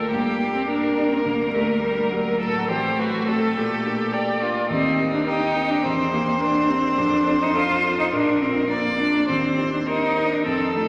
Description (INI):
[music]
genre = quick classical-period movement for piano quartet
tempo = 105 BPM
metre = 4/4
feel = rubato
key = unclear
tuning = A4 = 445 Hz
[part]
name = rich violin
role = melody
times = 0.0-10.9 s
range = Eb4 to D5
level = -27 LUFS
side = equal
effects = none
[part]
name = dark grand piano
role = accompaniment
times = 0.0-10.9 s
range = Bb1 to D5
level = -32 LUFS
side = equal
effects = none
[part]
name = rich viola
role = accompaniment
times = 0.0-10.3 s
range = G4 to D5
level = -33 LUFS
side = equal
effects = none
[part]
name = rich cello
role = second line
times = 0.1-10.8 s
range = E3 to F4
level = -24 LUFS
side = equal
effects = none
[sound]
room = wet church reverb, RT60 3.5 s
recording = vinyl crackle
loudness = -22 LUFS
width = mono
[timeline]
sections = 0.0-10.9 A section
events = none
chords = 0.1 Gm; 2.4 F#dim/A; 3.6 Gm/Bb; 4.7 Cm7/Eb; 5.8 C7/E; 7.0 F; 8.1 Bb; 9.3 Cm/Eb